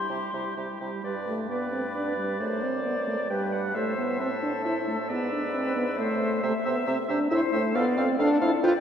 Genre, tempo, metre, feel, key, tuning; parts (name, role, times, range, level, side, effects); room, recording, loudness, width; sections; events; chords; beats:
quick classical-period movement for wind quintet; 134 BPM; 3/4; rubato; G major; A4 = 441 Hz
silver concert flute; melody; 0.0-8.8 s; A4 to C6; -34 LUFS; left 5 dB
clear oboe; second line; 0.0-8.7 s; G4 to G5; -34 LUFS; left 2 dB
clear clarinet; accompaniment; 0.0-8.7 s; E4 to D5; -34 LUFS; right 5 dB
mellow French horn; accompaniment; 0.0-8.7 s; G3 to F4; -27 LUFS; equal
clear bassoon; bass; 0.1-8.7 s; F2 to C3; -33 LUFS; right 2 dB
wet church reverb, RT60 3.6 s; -25 LUFS; side -8 dB against mid
0.0-1.0 A section; 1.0-8.8 B section
0.0 C; 1.0 G; 2.4 D7/F#; 3.3 G; 3.8 Am; 5.1 E7/G#; 6.0 Am; 6.4 C; 7.3 Am; 7.8 Dm/F
0.09 0.56 | 1.04 1.49 1.95 | 2.40 2.85 3.30 | 3.75 4.20 4.65 | 5.10 5.54 5.98 | 6.43 6.87 7.31 | 7.75 8.20 8.64